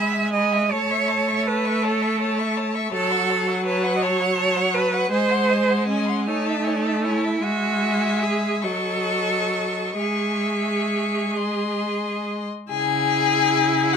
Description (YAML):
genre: classical, slow romantic movement for string quartet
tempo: 43-56 BPM (dotted quarters)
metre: 6/8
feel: rubato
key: C# minor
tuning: A4 = 440 Hz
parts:
  - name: rich violin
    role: melody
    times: 0.0-14.0 s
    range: F#5 to C#6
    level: -27 LUFS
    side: left 10 dB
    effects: none
  - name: rich violin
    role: second line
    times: 0.0-14.0 s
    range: G#4 to G#5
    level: -29 LUFS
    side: left 6 dB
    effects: none
  - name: rich viola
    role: accompaniment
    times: 0.0-14.0 s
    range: F#3 to E4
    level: -24 LUFS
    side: right 1 dB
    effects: none
  - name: bright cello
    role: bass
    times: 0.0-14.0 s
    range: C#3 to E5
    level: -24 LUFS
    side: right 4 dB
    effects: none
room: light reverb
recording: minimal, uncompressed stereo recording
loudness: -19 LUFS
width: side -7 dB against mid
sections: 0.0-12.7 A section; 12.7-14.0 B section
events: none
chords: 0.0 E/G#; 0.7 A; 2.9 F#m; 5.1 G#7; 6.3 Amaj7; 7.4 E/G#; 8.6 D#m7b5/F#; 10.0 C#m/G#; 12.7 C#m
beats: | 0.71 1.83 | 2.93 4.03 | 5.12 6.27 | 7.43 8.64 | 9.98 11.37 | 12.71 13.94